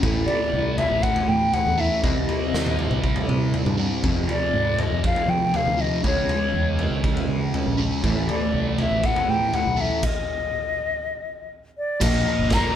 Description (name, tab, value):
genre	psychedelic rock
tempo	120 BPM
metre	4/4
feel	straight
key	unclear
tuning	A4 = 439 Hz
part	fuzz guitar	riff	0.0-12.8 s	F2 to Db4	-24 LUFS	right 1 dB	distortion, phaser
part	fingered electric bass	bass	0.0-12.6 s	G1 to F3	-26 LUFS	equal	none
part	raw garage drum kit	drums	0.0-12.6 s	crash cymbal, kick drum, snare drum, toms	-26 LUFS	equal	none
part	silver concert flute	melody	0.3-12.8 s	Db5 to Bb5	-24 LUFS	left 2 dB	none
room	moderate stone room reverb, RT60 1.3 s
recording	band playing live in one room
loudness	-20 LUFS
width	side -10 dB against mid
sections	0.0-12.0 A section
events	stop 10.0-12.0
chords	0.0 Am; 2.0 Cm; 4.0 Fm; 6.0 Dbm; 8.0 Am; 10.0 N.C.; 12.0 Bbsus4